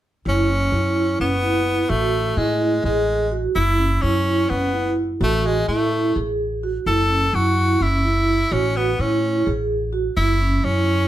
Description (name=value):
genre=progressive instrumental, progressive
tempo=254 BPM (eighths)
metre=7/8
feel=straight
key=F# minor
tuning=A4 = 440 Hz
part: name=edgy tenor saxophone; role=melody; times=0.3-11.1 s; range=G#3 to A4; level=-22 LUFS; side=left 1 dB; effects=slapback echo
part: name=vibraphone with medium mallets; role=arpeggios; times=0.3-11.1 s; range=C#4 to G#4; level=-22 LUFS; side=right 3 dB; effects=none
part: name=upright bass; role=bass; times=0.3-11.0 s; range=F#1 to A2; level=-22 LUFS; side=equal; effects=none
room=moderate small room reverb, RT60 0.5 s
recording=none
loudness=-18 LUFS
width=side -12 dB against mid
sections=0.3-11.1 A section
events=none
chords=0.3 F#5; 1.9 A5; 3.6 F#5; 5.2 A5; 6.9 F#m7; 8.5 Amaj7; 10.2 F#5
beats=| 0.26 0.49 0.73 0.96 1.20 1.44 1.67 | 1.91 2.14 2.38 2.62 2.85 3.09 3.33 | 3.56 3.80 4.03 4.27 4.50 4.74 4.98 | 5.21 5.45 5.69 5.92 6.16 6.39 6.63 | 6.87 7.10 7.34 7.58 7.81 8.05 8.28 | 8.52 8.76 8.99 9.23 9.46 9.70 9.94 | 10.17 10.41 10.64 10.88